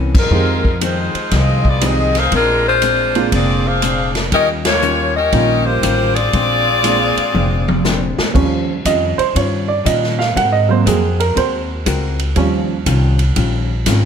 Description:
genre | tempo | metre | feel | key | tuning
jazz, big band swing | 119 BPM | 4/4 | swing 66% on 8ths | unclear | A4 = 440 Hz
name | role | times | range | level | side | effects
hollow-body jazz guitar | accompaniment | 0.0-14.1 s | F2 to Bb4 | -23 LUFS | left 7 dB | none
upright bass | bass | 0.0-14.1 s | F1 to Bb2 | -18 LUFS | equal | none
swinging big-band drum kit | drums | 0.1-14.0 s | crash cymbal, hi-hat, kick drum, ride cymbal, snare drum, toms | -21 LUFS | equal | none
clear saxophone section | melody | 0.2-8.2 s | Ab3 to F5 | -16 LUFS | left 3 dB | none
clear baby grand piano | accompaniment | 0.3-12.8 s | F3 to Gb5 | -18 LUFS | right 7 dB | none
room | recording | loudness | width
light reverb | none | -13 LUFS | side -7 dB against mid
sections
0.0-8.3 A section; 8.3-14.1 B section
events
drum fill 0.0-0.3, 7.3-8.3; band accent 0.1, 4.6; grand piano solo 8.3-14.1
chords
0.3 Fm7; 2.3 Bb9; 4.3 Eb9; 6.3 Bb9; 8.3 Eb9; 10.4 Ab9; 12.4 Eb9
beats
| 0.31 0.81 1.31 1.81 | 2.32 2.82 3.32 3.82 | 4.32 4.83 5.33 5.83 | 6.33 6.84 7.34 7.84 | 8.35 8.85 9.35 9.86 | 10.36 10.86 11.36 11.87 | 12.37 12.87 13.37 13.88

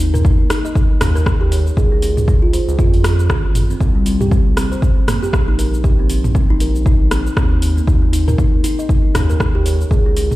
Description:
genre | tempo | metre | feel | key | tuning
afro house | 118 BPM | 4/4 | swing 58% on 16ths | unclear | A4 = 440 Hz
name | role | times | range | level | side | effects
kalimba | arpeggios | 0.0-10.3 s | G3 to Eb5 | -21 LUFS | right 1 dB | sidechain pumping, tape echo
round analog bass | bass | 0.0-10.4 s | Ab1 to F2 | -17 LUFS | equal | sidechain pumping
deep house drum kit | drums | 0.0-10.4 s | cabasa, hi-hat, rim click, toms | -22 LUFS | right 1 dB | none
electronic kick drum | drums | 0.2-10.0 s | none | -15 LUFS | equal | none
room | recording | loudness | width
little or no reverb | played on a big sound system in a bare room, large studio reverb | -13 LUFS | side -17 dB against mid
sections
0.0-10.4 A section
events
none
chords
0.0 Eb5; 1.8 Db; 3.8 Cm7; 7.9 Eb5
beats
0.25 0.76 1.26 | 1.77 2.28 2.79 3.30 | 3.81 4.32 4.83 5.33 | 5.84 6.35 6.86 7.37 | 7.88 8.38 8.89 9.40 | 9.91

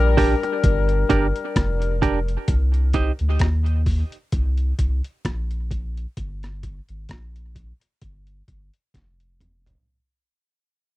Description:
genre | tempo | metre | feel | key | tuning
dub reggae | 65 BPM | 4/4 | swing 56% on 16ths | unclear | A4 = 440 Hz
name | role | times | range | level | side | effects
clear horn section | second line | 0.0-2.0 s | G3 to Bb4 | -24 LUFS | left 6 dB | tape echo
soft dub sub bass | bass | 0.0-9.8 s | F1 to Eb2 | -22 LUFS | equal | none
semi-hollow electric guitar | accompaniment | 0.2-3.1 s | D4 to Eb5 | -24 LUFS | right 6 dB | tape echo
trip hop sampler-style drum kit | drums | 0.2-9.9 s | hi-hat, kick drum, rim click, snare drum, toms | -23 LUFS | equal | none
room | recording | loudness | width
little or no reverb | dry, close 1970s-style studio recording | -19 LUFS | side -17 dB against mid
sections
0.0-9.9 A section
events
break 0.0-9.9; fade-out 0.0-9.9; drum fill 8.9-9.9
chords
0.0 Gm; 2.5 Cm; 6.2 Gm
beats
0.64 1.56 | 2.48 3.40 4.32 5.25 | 6.17 7.09 8.02 8.94

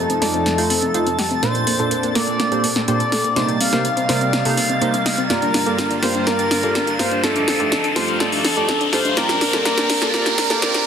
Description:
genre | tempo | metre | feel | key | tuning
progressive house | 124 BPM | 4/4 | straight | unclear | A4 = 437 Hz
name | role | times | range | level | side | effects
expressive synth lead | melody | 0.0-10.9 s | A4 to F5 | -22 LUFS | left 1 dB | wide subtle chorus, digital delay
lush unison pad | sustained chords | 0.0-10.9 s | F2 to A4 | -27 LUFS | equal | chorus, vintage 12-bit sampler grit
soft round pluck | arpeggios | 0.0-10.8 s | Bb3 to Eb5 | -25 LUFS | left 1 dB | chorus, cassette tape, digital delay
riser | sound effects | 0.9-10.9 s | none | -26 LUFS | equal | none
twinkling granular texture | texture | 0.0-10.9 s | A6 | -32 LUFS | right 1 dB | built-in reverb
deep house drum kit | drums | 0.1-10.8 s | hi-hat, snare drum | -22 LUFS | equal | overdrive
chorused polysynth | stabs | 0.2-10.8 s | G2 to F5 | -24 LUFS | right 3 dB | none
room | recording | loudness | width
moderate digital room reverb, RT60 1.2 s, digital ambience | dense, heavily limited modern master, high-pass filter | -16 LUFS | side -8 dB against mid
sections
0.0-10.9 A section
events
build-up 0.0-10.9; drum fill 0.0-10.9; filter sweep on analog polysynth 0.0-10.9; filter sweep 0.0-10.9; riser 0.9-10.9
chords
0.0 F7; 1.4 Bbmaj9; 3.4 Cm7; 5.3 Gm7; 7.2 F7; 9.2 Bbmaj9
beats
0.46 0.94 | 1.43 1.91 2.40 2.88 | 3.36 3.85 4.33 4.82 | 5.30 5.78 6.27 6.75 | 7.24 7.72 8.20 8.69 | 9.17 9.65 10.14 10.62

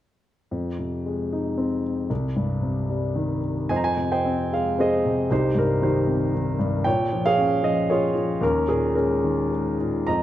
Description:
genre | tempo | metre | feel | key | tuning
classical, lyrical solo piano | 114 BPM | 3/4 | rubato | F minor | A4 = 440 Hz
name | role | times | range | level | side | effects
warm concert grand piano | solo | 0.5-10.2 s | C2 to Bb5 | -21 LUFS | equal | none
room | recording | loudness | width
moderate recital hall reverb, RT60 1.4 s | dark, warm production | -21 LUFS | side -12 dB against mid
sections
0.5-3.7 A section; 3.7-10.2 B section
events
none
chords
0.5 Fm7; 2.1 Cm; 3.7 Fm7; 5.3 Cm; 6.9 Bbm7; 8.4 Eb7sus4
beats
| 0.51 1.06 1.58 | 2.10 2.62 3.15 | 3.70 4.25 4.78 | 5.31 5.82 6.34 | 6.86 7.38 7.90 | 8.43 8.96 9.52 | 10.08

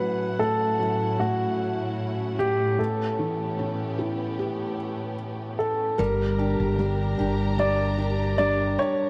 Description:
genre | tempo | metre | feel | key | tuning
pop | 75 BPM | 4/4 | straight | unclear | A4 = 440 Hz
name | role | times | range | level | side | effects
dark grand piano | melody | 0.0-9.1 s | F#4 to D5 | -29 LUFS | equal | none
felt-muted upright piano | accompaniment | 0.0-9.1 s | A2 to G4 | -32 LUFS | equal | none
dark studio string section | sustained chords | 0.0-9.1 s | A2 to Bb5 | -34 LUFS | equal | none
fingerpicked steel-string acoustic guitar | arpeggios | 6.0-9.1 s | G3 to G4 | -34 LUFS | equal | none
mellow fretless electric bass | bass | 6.0-8.8 s | G1 | -29 LUFS | equal | none
room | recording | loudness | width
moderate plate reverb, RT60 3.1 s | none | -26 LUFS | mono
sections
0.0-6.0 A section; 6.0-9.1 B section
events
none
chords
0.0 A6; 2.8 A7; 6.0 Gm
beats
0.39 1.19 1.99 | 2.79 3.59 4.39 5.19 | 5.99 6.79 7.59 8.39

